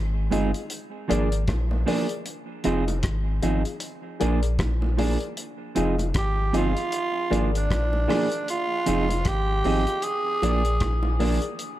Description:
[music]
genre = roots reggae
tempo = 77 BPM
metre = 4/4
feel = swing 58% on 16ths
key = unclear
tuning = A4 = 439 Hz
[part]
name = warm sub bass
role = bass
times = 0.0-11.4 s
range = F1 to Bb1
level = -25 LUFS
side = equal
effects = none
[part]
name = mellow electric guitar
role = accompaniment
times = 0.3-11.4 s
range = F3 to Ab4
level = -28 LUFS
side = right 5 dB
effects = dub echo
[part]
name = dark upright piano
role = stabs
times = 0.3-11.4 s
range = F4 to Eb5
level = -31 LUFS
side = left 7 dB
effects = none
[part]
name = cloth-damped thuddy drum kit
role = drums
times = 0.3-11.8 s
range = hi-hat, kick drum, rim click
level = -31 LUFS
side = left 1 dB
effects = none
[part]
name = bongos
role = percussion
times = 0.3-11.4 s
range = none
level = -36 LUFS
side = right 2 dB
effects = none
[part]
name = growling tenor saxophone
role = melody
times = 6.2-11.2 s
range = D4 to Ab4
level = -26 LUFS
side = right 2 dB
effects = dub echo
[sound]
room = light reverb, studio reverb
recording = dark, warm production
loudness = -22 LUFS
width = side -14 dB against mid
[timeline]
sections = 0.0-11.8 A section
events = none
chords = 0.0 Fm7; 0.7 Bb7; 2.3 Fm7; 3.8 Bb7; 5.4 Fm7; 6.9 Bb7; 8.5 Fm7; 10.0 Bb7

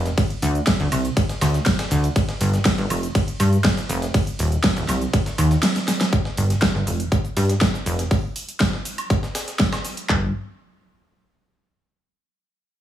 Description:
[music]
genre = progressive house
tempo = 121 BPM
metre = 4/4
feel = straight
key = unclear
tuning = A4 = 441 Hz
[part]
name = plucky analog bass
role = bass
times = 0.0-10.3 s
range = Eb1 to G2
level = -20 LUFS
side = equal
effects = tube saturation, sidechain pumping
[part]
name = big-room dance drum kit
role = drums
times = 0.1-10.1 s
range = cabasa, hi-hat, ride cymbal, snare drum, woodblock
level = -24 LUFS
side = equal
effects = overdrive, studio reverb
[part]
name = breakbeat sampler-style drum kit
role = drums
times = 0.1-10.1 s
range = hi-hat, snare drum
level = -32 LUFS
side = equal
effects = sidechain pumping on hats, high-pass filter on hats, studio reverb, high-pass filter on snare
[part]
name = big-room dance drum kit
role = drums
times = 0.2-10.2 s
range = handclaps, kick drum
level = -21 LUFS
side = equal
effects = overdrive, studio reverb
[sound]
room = digital ambience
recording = studio ambience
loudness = -18 LUFS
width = side -11 dB against mid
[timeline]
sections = 0.0-6.1 A section; 6.1-10.1 B section; 10.1-12.1 C section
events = drop 0.0-6.1; drum fill 5.8-6.1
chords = none

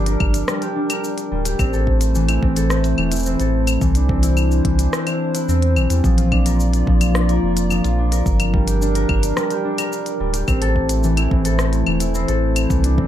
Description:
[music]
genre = folktronica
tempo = 108 BPM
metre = 4/4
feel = straight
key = unclear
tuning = A4 = 440 Hz
[part]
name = warbly tape-like pad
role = sustained chords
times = 0.0-13.1 s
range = G3 to D5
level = -26 LUFS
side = right 1 dB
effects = chorus, built-in reverb
[part]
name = concert harp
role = arpeggios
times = 0.0-13.1 s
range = E3 to Bb4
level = -21 LUFS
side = left 1 dB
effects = ping-pong delay, plate reverb
[part]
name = warm sub bass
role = bass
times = 0.0-13.1 s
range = D1 to E2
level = -18 LUFS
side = equal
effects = none
[part]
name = organic electronic drum kit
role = drums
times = 0.1-13.0 s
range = claves, hi-hat, rim click, shaker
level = -26 LUFS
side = left 3 dB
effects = none
[part]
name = electronic kick drum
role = drums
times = 0.2-13.1 s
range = none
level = -20 LUFS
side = equal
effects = none
[sound]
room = little or no reverb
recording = none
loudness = -16 LUFS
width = side -11 dB against mid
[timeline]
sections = 0.0-13.1 A section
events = none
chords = 0.0 Gm; 1.6 Am; 3.8 Cadd9; 6.0 Bb; 8.3 Gm; 10.5 Am

